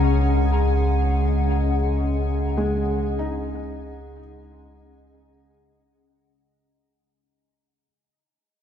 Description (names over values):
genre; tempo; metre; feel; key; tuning
ambient; free time; none; none; unclear; A4 = 439 Hz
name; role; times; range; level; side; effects
warbly tape-like pad; sustained chords; 0.0-6.2 s; C#4 to F#5; -26 LUFS; left 3 dB; chorus, built-in reverb
felt-muted upright piano; arpeggios; 0.0-7.8 s; G#3 to A#5; -31 LUFS; equal; dub echo
deep rumbling drone; bass; 0.0-6.2 s; C#2; -23 LUFS; equal; built-in reverb
organ-like drone; drone; 0.0-6.3 s; C#3 to G#3; -28 LUFS; right 1 dB; ensemble chorus, built-in reverb, phaser
rich chamber violin section; texture; 0.0-6.2 s; G#5; -44 LUFS; left 2 dB; none
room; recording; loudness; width
moderate echo chamber reverb, RT60 2.2 s; echo-heavy mix; -20 LUFS; side -9 dB against mid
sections
0.0-6.2 A section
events
fade-out on violin section 0.0-6.2; fade-out 0.0-6.2; filter sweep on ambient pad 0.0-6.2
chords
0.0 C#sus2